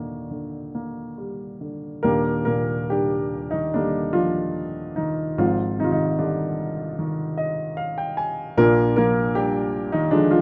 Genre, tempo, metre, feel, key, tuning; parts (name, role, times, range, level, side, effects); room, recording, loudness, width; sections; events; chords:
classical, lyrical solo piano; 68-79 BPM; 4/4; rubato; Eb major; A4 = 444 Hz
warm baby grand piano; solo; 0.0-10.4 s; Eb1 to Ab5; -23 LUFS; equal
light reverb; -23 LUFS; mono
0.0-2.0 A section; 2.0-10.4 A section
grand piano fill 7.0-8.6
0.0 Ebmaj7; 5.4 Abmaj7; 8.6 Bb13